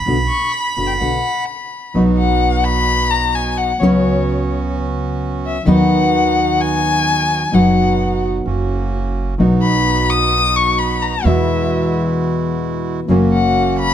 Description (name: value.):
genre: tango.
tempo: 129 BPM.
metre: 4/4.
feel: rubato.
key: B major.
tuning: A4 = 437 Hz.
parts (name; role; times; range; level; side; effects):
bandoneon; melody; 0.0-1.4 s; B5; -20 LUFS; right 2 dB; none.
upright bass; bass; 0.0-13.9 s; F#1 to E2; -21 LUFS; right 2 dB; none.
nylon-string guitar; accompaniment; 0.1-13.9 s; B2 to B4; -17 LUFS; left 1 dB; none.
warm violin; second line; 0.3-13.9 s; C#5 to D#6; -18 LUFS; left 6 dB; none.
bandoneon; stabs; 1.9-13.9 s; G#3 to F#4; -25 LUFS; right 8 dB; none.
room: light reverb.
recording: close, detailed microphones.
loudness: -14 LUFS.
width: side -10 dB against mid.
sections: 0.0-2.0 A section; 2.0-13.9 B section.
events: violin solo 2.0-13.9.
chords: 0.1 Bm; 2.0 B; 3.8 F#sus4/C#; 5.7 B/D#; 7.5 B/F#; 8.5 F#; 9.4 B; 11.3 Eadd9; 13.1 F#.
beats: | 0.07 0.54 1.01 1.48 | 1.96 2.42 2.89 3.36 | 3.82 4.28 4.75 5.21 | 5.67 6.14 6.60 7.07 | 7.53 8.00 8.46 8.93 | 9.39 9.86 10.32 10.79 | 11.25 11.71 12.18 12.64 | 13.10 13.56.